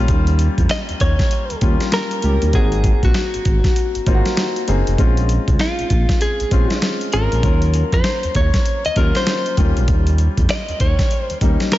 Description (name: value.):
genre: R&B, new jack swing.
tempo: 98 BPM.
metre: 4/4.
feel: swing 62% on 16ths.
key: unclear.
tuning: A4 = 440 Hz.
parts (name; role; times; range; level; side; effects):
warm baby grand piano; accompaniment; 0.0-11.8 s; Gb3 to Ab4; -24 LUFS; left 3 dB; slapback echo.
smooth gliding synth bass; bass; 0.0-11.6 s; F1 to F2; -18 LUFS; equal; none.
dusty soul sampler-style drum kit; drums; 0.1-11.8 s; hi-hat, kick drum, snare drum; -18 LUFS; equal; none.
direct-recorded clean electric guitar; melody; 0.7-11.8 s; F4 to Eb5; -23 LUFS; left 1 dB; slapback echo.
room: light reverb.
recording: nothing above 7.7 kHz.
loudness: -15 LUFS.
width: side -15 dB against mid.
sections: 0.0-11.8 A section.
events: none.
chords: 0.0 Eb7; 2.5 Ab7; 5.0 Bbm7; 7.4 Ebm7; 9.6 Eb7.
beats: | 0.08 0.70 1.31 1.92 | 2.53 3.15 3.76 4.37 | 4.98 5.59 6.21 6.82 | 7.43 8.04 8.65 9.27 | 9.88 10.49 11.10 11.72.